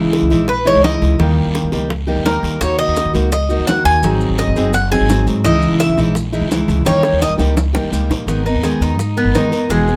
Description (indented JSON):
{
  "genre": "latin, Cuban son and guajira",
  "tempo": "169 BPM",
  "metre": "4/4",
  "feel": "straight",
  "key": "G# minor",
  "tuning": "A4 = 440 Hz",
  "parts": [
    { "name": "fingerpicked steel-string acoustic guitar", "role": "accompaniment", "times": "0.0-10.0 s", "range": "B2 to A#4", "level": "-20 LUFS", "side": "equal", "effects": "none" },
    { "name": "upright bass", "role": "bass", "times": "0.0-10.0 s", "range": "E1 to G#2", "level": "-20 LUFS", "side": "equal", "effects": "none" },
    { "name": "bongos", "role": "percussion", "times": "0.1-9.9 s", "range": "none", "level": "-25 LUFS", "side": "equal", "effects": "none" },
    { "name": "guiro", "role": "percussion", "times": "0.1-10.0 s", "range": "none", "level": "-34 LUFS", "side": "equal", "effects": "none" },
    { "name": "Cuban tres", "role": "arpeggios", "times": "0.5-10.0 s", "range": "G#3 to G#5", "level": "-20 LUFS", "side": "equal", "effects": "none" },
    { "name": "maracas", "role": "percussion", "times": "2.6-10.0 s", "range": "none", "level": "-37 LUFS", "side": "equal", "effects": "none" }
  ],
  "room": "light reverb",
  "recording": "close, detailed microphones",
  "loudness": "-15 LUFS",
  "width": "mono",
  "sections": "0.0-8.3 A section; 8.3-10.0 B section",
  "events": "Cuban tres solo 0.0-8.3; drum fill 6.9-8.3",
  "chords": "0.0 C#madd9; 1.2 D#; 2.6 D#m; 4.0 G#7; 5.5 C#madd9; 6.9 D#; 8.3 G#madd9"
}